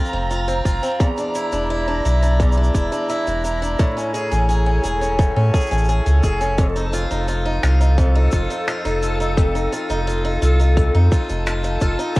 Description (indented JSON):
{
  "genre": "folktronica",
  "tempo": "86 BPM",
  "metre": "4/4",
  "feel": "straight",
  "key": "unclear",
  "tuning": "A4 = 443 Hz",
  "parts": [
    { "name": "picked swing-style acoustic guitar", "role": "arpeggios", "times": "0.0-12.2 s", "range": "E2 to G#4", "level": "-22 LUFS", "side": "equal", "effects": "cassette tape, analog delay" },
    { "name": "backwards swelling texture", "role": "texture", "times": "0.0-12.2 s", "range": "A4 to Bb5", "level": "-28 LUFS", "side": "left 1 dB", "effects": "built-in reverb, cassette tape" },
    { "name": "warm sub bass", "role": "bass", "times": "0.1-12.0 s", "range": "E1 to A2", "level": "-18 LUFS", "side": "equal", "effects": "none" },
    { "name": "shaker and finger snaps", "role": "drums", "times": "0.1-12.2 s", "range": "none", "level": "-31 LUFS", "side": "equal", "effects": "cassette tape" },
    { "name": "electronic kick drum", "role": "drums", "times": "0.7-12.2 s", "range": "none", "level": "-18 LUFS", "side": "equal", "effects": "cassette tape" }
  ],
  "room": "light reverb, small room ambience",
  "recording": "home recording on cassette, vinyl crackle",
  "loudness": "-16 LUFS",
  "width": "side -21 dB against mid",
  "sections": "0.0-12.2 A section",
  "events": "none",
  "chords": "0.0 Fsus4; 1.0 E5; 3.8 Amaj7; 6.6 F5"
}